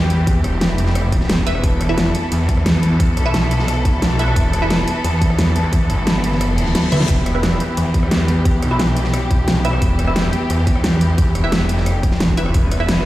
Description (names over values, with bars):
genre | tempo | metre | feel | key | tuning
dark technical drum and bass | 176 BPM | 4/4 | straight | E minor | A4 = 441 Hz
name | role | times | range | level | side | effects
rich studio string section | sustained chords | 0.0-13.1 s | E3 to B4 | -23 LUFS | left 1 dB | sidechain pumping
snarling distorted saw bass | bass | 0.0-13.0 s | E1 to E2 | -18 LUFS | equal | distortion, sidechain pumping
dubstep drum kit | drums | 0.1-13.0 s | hi-hat, rim click, snare drum, toms | -21 LUFS | equal | overdrive
electronic kick drum | drums | 0.3-12.6 s | none | -16 LUFS | equal | none
filtered dub chord stab | stabs | 1.5-4.7, 6.9-12.9 s | E4 to E5 | -25 LUFS | right 2 dB | phaser, wide subtle chorus, digital delay
reverse cymbal | sound effects | 6.5-7.1 s | none | -29 LUFS | left 5 dB | none
room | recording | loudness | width
light reverb | played on a big sound system in a bare room, large studio reverb | -14 LUFS | side -15 dB against mid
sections
0.0-13.1 A section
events
kick drops out 6.4-7.1; reverse cymbal 6.5-7.1; drum fill 6.8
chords
0.0 Em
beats
| 0.27 0.61 0.95 1.29 | 1.64 1.98 2.32 2.66 | 3.00 3.34 3.68 4.02 | 4.36 4.70 5.04 5.39 | 5.73 6.07 6.41 6.75 | 7.09 7.43 7.77 8.11 | 8.45 8.79 9.14 9.48 | 9.82 10.16 10.50 10.84 | 11.18 11.52 11.86 12.20 | 12.54 12.89